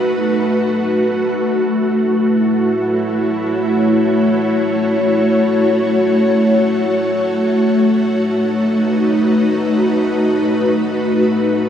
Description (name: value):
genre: ambient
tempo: free time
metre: none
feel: none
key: F# dorian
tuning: A4 = 440 Hz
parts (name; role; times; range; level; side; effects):
- ethereal airy pad; solo; 0.0-11.7 s; A3 to C#5; -13 LUFS; equal; ensemble chorus, built-in reverb
room: wet scoring stage reverb, RT60 1.9 s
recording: none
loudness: -13 LUFS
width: side -9 dB against mid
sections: 0.0-1.4 A section; 1.4-11.7 B section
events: none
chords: 0.0 B7; 1.4 F#m7; 7.6 B7